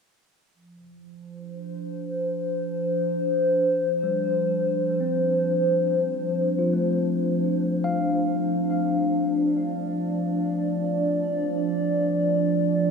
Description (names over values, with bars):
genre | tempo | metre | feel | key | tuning
ambient | free time | none | none | D minor | A4 = 440 Hz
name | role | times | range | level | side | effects
warbly tape-like pad | sustained chords | 1.4-12.9 s | F3 to D5 | -22 LUFS | equal | chorus, built-in reverb
tine electric piano | arpeggios | 4.0-12.9 s | G3 to F5 | -32 LUFS | right 2 dB | medium stereo tremolo, diffuse ambient delay
room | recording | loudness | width
wet huge ambient reverb, RT60 8.5 s | none | -22 LUFS | side -5 dB against mid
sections
0.6-12.9 A section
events
fade-in on tine electric piano 0.6-12.9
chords
0.6 Dm7